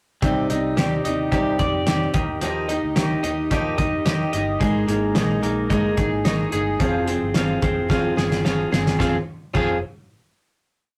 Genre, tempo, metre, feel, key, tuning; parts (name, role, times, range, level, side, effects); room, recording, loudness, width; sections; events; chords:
jangly indie pop; 109 BPM; 4/4; straight; F dorian; A4 = 439 Hz
fingerpicked steel-string acoustic guitar; accompaniment; 0.2-9.8 s; C3 to Eb5; -26 LUFS; equal
twelve-string electric guitar; arpeggios; 0.2-9.8 s; C3 to Eb5; -28 LUFS; equal
vintage muted fingered electric bass; bass; 0.2-9.8 s; F1 to F2; -32 LUFS; equal
cloth-damped thuddy drum kit; drums; 0.2-9.7 s; crash cymbal, hi-hat, kick drum, snare drum; -26 LUFS; equal
moderate booth ambience, RT60 0.2 s; rough rehearsal-room recording, warm saturation; -22 LUFS; mono
0.2-9.0 verse; 9.0-11.0 final chord
drum fill 7.9-9.0
0.2 Cmadd9; 2.1 Ebadd9; 4.6 Absus2; 6.8 Fm